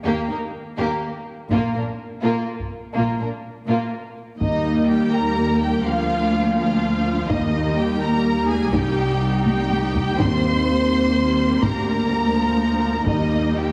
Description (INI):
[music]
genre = cinematic, epic orchestral film score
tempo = 83 BPM (dotted quarters)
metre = 6/8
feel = straight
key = Eb major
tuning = A4 = 437 Hz
[part]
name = warm symphonic violin section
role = melody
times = 0.0-13.7 s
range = F4 to C6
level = -30 LUFS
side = equal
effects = none
[part]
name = warm studio violin section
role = second line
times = 0.0-13.7 s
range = Bb3 to C5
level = -31 LUFS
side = equal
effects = none
[part]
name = clear symphonic viola section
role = accompaniment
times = 0.1-13.7 s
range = F3 to Eb4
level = -30 LUFS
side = equal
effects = none
[part]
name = clear symphonic double bass section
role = bass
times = 0.1-13.7 s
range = Bb1 to Eb2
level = -29 LUFS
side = equal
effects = none
[part]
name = warm symphonic cello section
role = bass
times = 0.1-13.7 s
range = C2 to Bb2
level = -26 LUFS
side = equal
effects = none
[part]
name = taiko ensemble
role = drums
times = 1.5-13.5 s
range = none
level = -28 LUFS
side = equal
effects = none
[part]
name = dark French horn section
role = sustained chords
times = 4.4-13.7 s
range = Eb3 to C4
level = -27 LUFS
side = equal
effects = none
[sound]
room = wet scoring stage reverb, RT60 1.8 s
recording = heavily compressed radio sound, studio ambience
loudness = -21 LUFS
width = mono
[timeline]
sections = 0.0-4.4 A section; 4.4-13.7 B section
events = build-up 0.0-4.4; drum fill 9.5-10.2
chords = 0.0 Eb; 1.5 Bb5; 4.4 Eb; 5.8 Bb/D; 7.3 Eb; 8.7 Cm; 10.2 Eb; 11.6 Bb/D; 13.1 Eb